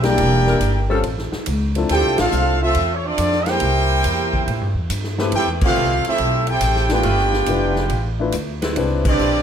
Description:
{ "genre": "jazz, big band swing", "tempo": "140 BPM", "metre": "4/4", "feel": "swing 68% on 8ths", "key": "C major", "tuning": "A4 = 444 Hz", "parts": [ { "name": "bright trumpet section", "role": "melody", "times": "0.0-9.4 s", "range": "C4 to G5", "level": "-20 LUFS", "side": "equal", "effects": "none" }, { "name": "clear trombone section", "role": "second line", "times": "0.0-9.4 s", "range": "F3 to G4", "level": "-23 LUFS", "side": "right 4 dB", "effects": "none" }, { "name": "warm grand piano", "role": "accompaniment", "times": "0.0-2.6, 5.2-9.0 s", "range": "F3 to B4", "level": "-24 LUFS", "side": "left 6 dB", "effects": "none" }, { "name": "upright bass", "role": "bass", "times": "0.0-9.4 s", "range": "E1 to A2", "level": "-21 LUFS", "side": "equal", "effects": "none" }, { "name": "swinging big-band drum kit", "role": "drums", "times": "0.0-9.3 s", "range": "crash cymbal, hi-hat, kick drum, ride cymbal, snare drum", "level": "-26 LUFS", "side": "equal", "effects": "none" }, { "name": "warm saxophone section", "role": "sustained chords", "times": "0.5-9.4 s", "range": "G3 to C5", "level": "-28 LUFS", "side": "left 1 dB", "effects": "none" } ], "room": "light reverb", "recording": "none", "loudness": "-16 LUFS", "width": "side -8 dB against mid", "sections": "0.0-9.4 A section", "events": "band accent 2.1, 5.5, 9.0", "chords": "0.2 Em7b5; 1.0 A; 1.9 Dm9; 3.6 C7; 5.3 Fmaj9#11; 7.0 G13; 8.8 Cmaj7" }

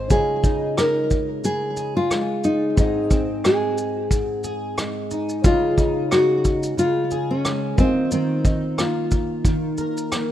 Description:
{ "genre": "acoustic pop", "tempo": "90 BPM", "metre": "4/4", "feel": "swing 55% on 16ths", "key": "Db major", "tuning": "A4 = 440 Hz", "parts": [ { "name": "fingerpicked plugged-in steel-string acoustic guitar", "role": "accompaniment", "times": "0.0-10.3 s", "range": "Ab2 to C5", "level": "-25 LUFS", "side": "equal", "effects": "double-tracked left and right" }, { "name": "warm concert grand piano", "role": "accompaniment", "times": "0.0-10.3 s", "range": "Bb3 to F5", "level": "-34 LUFS", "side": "left 6 dB", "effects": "none" }, { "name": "nylon-string guitar", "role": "melody", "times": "0.1-10.1 s", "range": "C4 to Bb4", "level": "-21 LUFS", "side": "equal", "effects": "tape echo" }, { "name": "vintage brush drum kit", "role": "drums", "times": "0.1-10.3 s", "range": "kick drum, rim click, shaker", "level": "-21 LUFS", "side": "equal", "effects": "none" } ], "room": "studio reverb", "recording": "rough home demo mix", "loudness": "-19 LUFS", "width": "side -12 dB against mid", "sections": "0.1-10.3 A section", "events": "none", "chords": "0.1 Dbadd9; 2.8 Ab; 5.4 Dbadd9; 7.8 Ebsus2" }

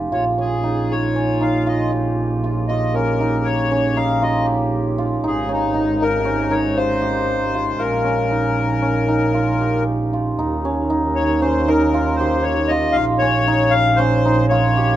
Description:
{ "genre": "contemporary instrumental, chamber music in an uneven meter", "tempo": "117 BPM", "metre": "5/4", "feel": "straight", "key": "Bb dorian", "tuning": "A4 = 439 Hz", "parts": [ { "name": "cimbalom", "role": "arpeggios", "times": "0.0-15.0 s", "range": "Db4 to G4", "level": "-20 LUFS", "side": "right 2 dB", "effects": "none" }, { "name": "rich double bass", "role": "bass", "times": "0.0-15.0 s", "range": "F1 to Eb2", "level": "-22 LUFS", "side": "right 2 dB", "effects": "none" }, { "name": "accordion", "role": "melody", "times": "0.1-15.0 s", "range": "Eb4 to F5", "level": "-21 LUFS", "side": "left 4 dB", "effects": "none" }, { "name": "warm woodwind section", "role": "sustained chords", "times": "0.1-10.4 s", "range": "Bb2 to G4", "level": "-28 LUFS", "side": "left 1 dB", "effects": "none" } ], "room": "light reverb", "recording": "close, detailed microphones", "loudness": "-16 LUFS", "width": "side -12 dB against mid", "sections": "0.0-10.4 A section; 10.4-15.0 B section", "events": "none", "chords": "0.1 Bbm; 5.2 Ab; 7.8 Bbm7; 10.4 Eb7; 13.0 Bbm" }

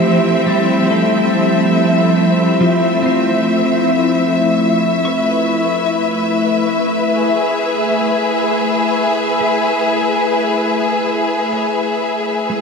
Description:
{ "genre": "ambient", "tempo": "free time", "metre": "none", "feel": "none", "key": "unclear", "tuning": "A4 = 440 Hz", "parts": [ { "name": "rich symphonic string section", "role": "sustained chords", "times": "0.0-12.6 s", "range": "F3 to E5", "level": "-15 LUFS", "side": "left 1 dB", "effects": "none" }, { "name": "twelve-string electric guitar", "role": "arpeggios", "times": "0.0-12.6 s", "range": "F3 to C#6", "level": "-20 LUFS", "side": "left 1 dB", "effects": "ping-pong delay" }, { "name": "organ-like drone", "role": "drone", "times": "0.0-12.6 s", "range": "A3 to E4", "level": "-19 LUFS", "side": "equal", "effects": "ensemble chorus, built-in reverb" } ], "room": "wet huge ambient reverb, RT60 8.4 s", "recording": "in a vast, echoing space", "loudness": "-13 LUFS", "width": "side -5 dB against mid", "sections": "0.0-12.6 A section", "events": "fade-out on clean electric guitar 0.0-12.6; fade-out 10.1-12.6", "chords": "0.0 Fmaj7; 4.4 E" }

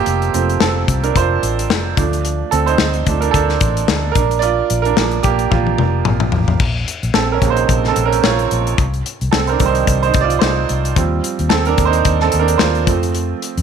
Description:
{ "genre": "piano-driven pop", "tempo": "110 BPM", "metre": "4/4", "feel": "swing 56% on 16ths", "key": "unclear", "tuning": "A4 = 440 Hz", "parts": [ { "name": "bright upright piano", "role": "accompaniment", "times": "0.0-13.6 s", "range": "C3 to D5", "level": "-17 LUFS", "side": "right 10 dB", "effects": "none" }, { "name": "vintage muted fingered electric bass", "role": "bass", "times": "0.1-13.6 s", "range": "F1 to F2", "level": "-19 LUFS", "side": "left 1 dB", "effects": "none" }, { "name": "modern studio drum kit", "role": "drums", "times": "0.1-13.6 s", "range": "crash cymbal, hi-hat, kick drum, snare drum, toms", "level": "-18 LUFS", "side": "left 5 dB", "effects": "none" } ], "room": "light reverb, small room ambience", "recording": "1960s-style stereo", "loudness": "-13 LUFS", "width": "side -7 dB against mid", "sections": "0.0-6.6 A section; 6.6-13.6 B section", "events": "upright piano solo 0.0-6.6, 6.6-13.6; drum fill 5.5-6.6", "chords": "0.0 F; 2.0 Dm; 4.2 Bb; 6.6 Bbmadd9; 8.8 Cm; 11.0 Eb6; 12.9 F" }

